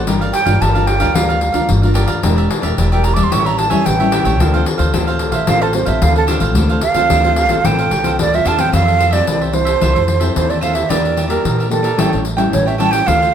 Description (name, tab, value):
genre	samba and choro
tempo	111 BPM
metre	4/4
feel	straight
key	D minor, F major from 8.7 s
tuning	A4 = 440 Hz
part	cavaquinho	accompaniment	0.0-13.3 s	D4 to G5	-23 LUFS	right 4 dB	none
part	nylon-string guitar	accompaniment	0.0-13.3 s	A2 to Bb4	-20 LUFS	left 2 dB	none
part	upright bass	bass	0.0-13.3 s	E1 to Bb2	-18 LUFS	equal	none
part	pandeiro	percussion	0.1-13.3 s	none	-19 LUFS	left 4 dB	none
part	breathy mellow silver concert flute	melody	0.3-13.3 s	A4 to D6	-16 LUFS	right 5 dB	none
room	moderate studio reverb, RT60 0.6 s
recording	none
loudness	-12 LUFS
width	side -9 dB against mid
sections	0.0-8.7 A section; 8.7-13.3 B section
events	flute solo 0.0-8.7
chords	0.1 Gm7; 2.2 Em7b5; 3.3 A7; 4.4 Dm7; 8.7 Fmaj7; 10.9 Em7b5; 12.0 A7